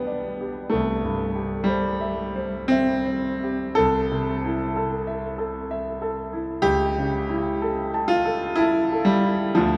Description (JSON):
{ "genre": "classical, romantic nocturne for solo piano", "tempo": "54-65 BPM", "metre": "3/4", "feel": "rubato", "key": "C major", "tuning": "A4 = 442 Hz", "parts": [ { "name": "clear concert grand piano", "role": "solo", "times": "0.0-9.8 s", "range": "B1 to A5", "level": "-24 LUFS", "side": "equal", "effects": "none" } ], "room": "wet cathedral reverb, RT60 7.2 s", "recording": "in a vast, echoing space", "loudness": "-24 LUFS", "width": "mono", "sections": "0.0-9.8 A section", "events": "none", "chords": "0.0 G/B; 0.7 C; 3.8 Am/C; 6.6 A7/C#" }